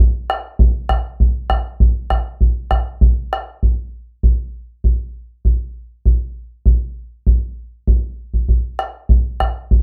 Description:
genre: andean folk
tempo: 99 BPM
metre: 2/4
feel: straight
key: none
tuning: none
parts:
  - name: bombo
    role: percussion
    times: 0.3-9.8 s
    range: none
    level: -17 LUFS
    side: equal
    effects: none
room: light reverb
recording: none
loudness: -19 LUFS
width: mono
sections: 0.0-4.2 A section; 4.2-9.1 B section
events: none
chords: none

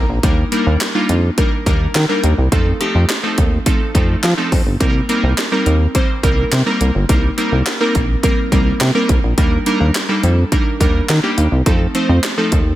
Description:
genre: dance-pop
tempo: 105 BPM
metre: 4/4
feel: straight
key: C dorian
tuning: A4 = 440 Hz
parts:
  - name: glassy digital keys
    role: accompaniment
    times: 0.0-12.6 s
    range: F3 to Bb5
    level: -18 LUFS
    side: equal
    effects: chorus, sidechain pumping
  - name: chorused synth bass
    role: bass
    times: 0.0-12.7 s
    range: G1 to F3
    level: -15 LUFS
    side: equal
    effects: sidechain pumping
  - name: house drum kit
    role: drums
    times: 0.2-12.7 s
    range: handclaps, hi-hat, kick drum, snare drum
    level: -17 LUFS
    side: equal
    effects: none
room: light reverb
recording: none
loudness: -13 LUFS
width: side -14 dB against mid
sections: 0.0-12.8 A section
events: synth keys fill 0.0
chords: 0.2 Ebmaj7; 2.5 F7; 4.8 Cm7; 9.4 Ebmaj7; 11.7 F7

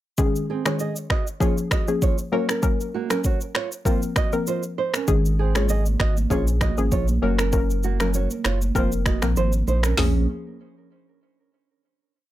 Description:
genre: afrobeats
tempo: 98 BPM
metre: 4/4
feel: swing 55% on 16ths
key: Bb minor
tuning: A4 = 440 Hz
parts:
  - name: soft round pluck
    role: accompaniment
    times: 0.2-10.2 s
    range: Eb3 to Bb4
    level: -26 LUFS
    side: left 3 dB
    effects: chorus, plate reverb
  - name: afro-pop drum kit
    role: drums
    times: 0.2-10.1 s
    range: finger snaps, hi-hat, kick drum, rim click, shaker, snare drum, toms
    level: -24 LUFS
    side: equal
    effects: none
  - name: nylon-string guitar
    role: riff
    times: 0.5-10.3 s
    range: Bb3 to Eb5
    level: -28 LUFS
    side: right 8 dB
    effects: tape echo
  - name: saturated sub bass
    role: bass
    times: 5.1-10.3 s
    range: F1 to Bb1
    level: -22 LUFS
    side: equal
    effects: none
  - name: congas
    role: percussion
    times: 5.6-10.3 s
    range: none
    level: -33 LUFS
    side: right 7 dB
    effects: none
room: light reverb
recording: none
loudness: -20 LUFS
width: side -14 dB against mid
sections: 0.2-10.0 verse; 10.0-12.3 final chord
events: none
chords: 0.2 Absus4; 1.4 Bbm7; 2.3 Gb; 3.9 Fsus4; 5.1 Absus4; 6.3 Bbm7; 7.2 Gb; 8.8 Fsus4; 10.0 Bbm7

